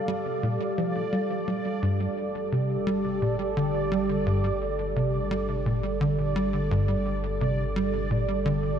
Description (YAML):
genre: ambient, sequencer-driven space music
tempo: 86 BPM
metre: 4/4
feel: straight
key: unclear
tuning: A4 = 440 Hz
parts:
  - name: sweeping resonant pad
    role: sustained chords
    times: 0.0-8.8 s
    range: G3 to F5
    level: -29 LUFS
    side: right 1 dB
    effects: chorus
  - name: bubbling stepped-filter texture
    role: texture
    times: 0.0-8.8 s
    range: D5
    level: -37 LUFS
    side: right 3 dB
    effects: chorus, built-in reverb
  - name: tight sequencer bass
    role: riff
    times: 0.1-8.8 s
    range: G2 to G3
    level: -27 LUFS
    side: equal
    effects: lush chorus, tape echo
  - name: warm sub bass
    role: bass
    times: 1.8-8.8 s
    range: G1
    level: -34 LUFS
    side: left 1 dB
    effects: none
room: wet huge ambient reverb, RT60 7.7 s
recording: dreamy mix soaked in reverb, cassette tape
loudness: -24 LUFS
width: side -8 dB against mid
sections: 0.0-1.8 A section; 1.8-8.8 B section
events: filter sweep on analog synth bass 0.0-1.8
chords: 0.0 Gsus2